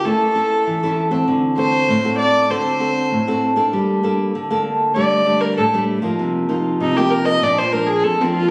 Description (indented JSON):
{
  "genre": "samba",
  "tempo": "98 BPM",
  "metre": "4/4",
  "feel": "straight",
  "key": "unclear",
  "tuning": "A4 = 440 Hz",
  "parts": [
    { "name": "dark viola", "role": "melody", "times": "0.0-8.5 s", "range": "C4 to Eb5", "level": "-20 LUFS", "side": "equal", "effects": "none" },
    { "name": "nylon-string guitar", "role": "accompaniment", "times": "0.0-8.5 s", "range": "F2 to A4", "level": "-20 LUFS", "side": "equal", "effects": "none" }
  ],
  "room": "wet recital hall reverb, RT60 1.4 s",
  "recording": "recorded on a phone in the room, studio reverb",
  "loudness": "-18 LUFS",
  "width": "mono",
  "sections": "0.0-8.5 A section",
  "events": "viola solo 0.0-8.5",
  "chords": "0.0 A; 1.3 D7; 3.7 Gmadd9; 5.0 Dsus4; 6.2 F7sus4/C; 7.4 Bb",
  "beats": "0.05 0.66 | 1.28 1.89 2.51 3.12 | 3.74 4.35 4.96 5.58 | 6.19 6.81 7.42 8.04"
}